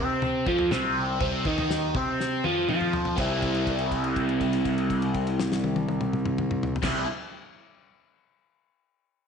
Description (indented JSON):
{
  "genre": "psychedelic rock",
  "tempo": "122 BPM",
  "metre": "4/4",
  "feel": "straight",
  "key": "C major",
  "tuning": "A4 = 440 Hz",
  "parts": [
    { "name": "biting overdriven guitar", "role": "riff", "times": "0.0-7.1 s", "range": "C3 to C5", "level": "-25 LUFS", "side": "equal", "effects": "phaser" },
    { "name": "fuzz picked electric bass", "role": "bass", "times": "0.0-7.0 s", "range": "C2 to C3", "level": "-31 LUFS", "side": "right 1 dB", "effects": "overdrive" },
    { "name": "damped 70s drum kit", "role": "drums", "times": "0.2-6.9 s", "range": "crash cymbal, kick drum, snare drum, toms", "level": "-32 LUFS", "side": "left 2 dB", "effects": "none" }
  ],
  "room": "moderate echo chamber reverb, RT60 1.5 s, small room ambience",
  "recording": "1960s-style stereo, nothing above 10.3 kHz",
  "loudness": "-24 LUFS",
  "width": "side -6 dB against mid",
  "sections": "0.0-3.2 A section; 3.2-7.1 B section",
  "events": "drum fill 2.2-3.2; held note 3.2-6.8",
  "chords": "0.0 Cmadd11; 3.2 C"
}